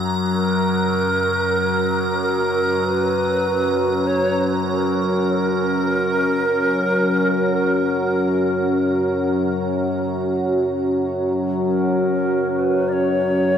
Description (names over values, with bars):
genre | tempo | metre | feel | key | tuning
dark ambient drone | free time | none | none | F# major | A4 = 440 Hz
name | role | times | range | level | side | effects
overtone-sweeping drone | drone | 0.0-13.6 s | F#2 to F#3 | -23 LUFS | left 1 dB | chorus, built-in reverb
icy glass pad | texture | 0.0-10.4 s | A#5 | -31 LUFS | equal | chorus, built-in reverb
bright long shakuhachi | melody | 0.3-13.6 s | A#4 to D5 | -22 LUFS | right 1 dB | tape echo
dark analog pad | sustained chords | 0.3-13.6 s | C#4 to C#5 | -21 LUFS | equal | chorus
room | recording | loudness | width
wet cathedral reverb, RT60 7.0 s | none | -17 LUFS | side -8 dB against mid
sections
0.0-10.4 A section; 10.4-13.6 B section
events
none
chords
0.0 F#